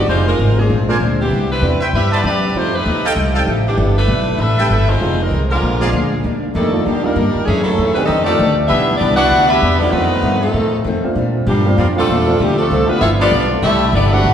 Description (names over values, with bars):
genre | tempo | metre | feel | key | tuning
jazz, big band swing | 195 BPM | 4/4 | swing 60% on 8ths | unclear | A4 = 444 Hz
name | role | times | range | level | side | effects
bright saxophone section | melody | 0.0-14.3 s | Eb3 to F#5 | -18 LUFS | left 1 dB | none
warm baby grand piano | accompaniment | 0.0-14.2 s | Eb3 to G4 | -23 LUFS | right 2 dB | none
upright bass | bass | 0.0-14.3 s | F1 to Bb2 | -17 LUFS | equal | none
fingerpicked old ladder-braced acoustic guitar | accompaniment | 0.1-14.3 s | F2 to A4 | -22 LUFS | left 3 dB | none
clear trumpet section | stabs | 0.9-5.9 s | Ab4 to A5 | -22 LUFS | right 1 dB | none
brilliant trombone section | second line | 5.5-14.3 s | G2 to F#4 | -20 LUFS | right 2 dB | none
room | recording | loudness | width
wet scoring stage reverb, RT60 1.8 s | recorded in a church or concert hall | -13 LUFS | side -9 dB against mid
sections
0.0-6.2 A section; 6.2-14.3 B section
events
none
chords
0.1 Fm7; 0.7 Bb9; 1.3 Cmaj7; 2.5 F9; 3.8 G69; 5.0 Fm7; 5.6 Bb7; 6.2 Ebmaj7; 7.5 F#m7; 8.1 F13; 8.7 Em7; 9.9 F7; 11.2 Bb6; 12.4 Dm7; 13.0 G7; 13.6 C6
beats
| 0.08 0.39 0.69 1.00 | 1.31 1.62 1.93 2.24 | 2.55 2.85 3.16 3.47 | 3.78 4.09 4.39 4.70 | 5.01 5.32 5.62 5.93 | 6.24 6.55 6.86 7.16 | 7.47 7.78 8.09 8.39 | 8.70 9.01 9.31 9.62 | 9.93 10.24 10.54 10.85 | 11.16 11.47 11.78 12.08 | 12.39 12.70 13.01 13.32 | 13.63 13.93 14.24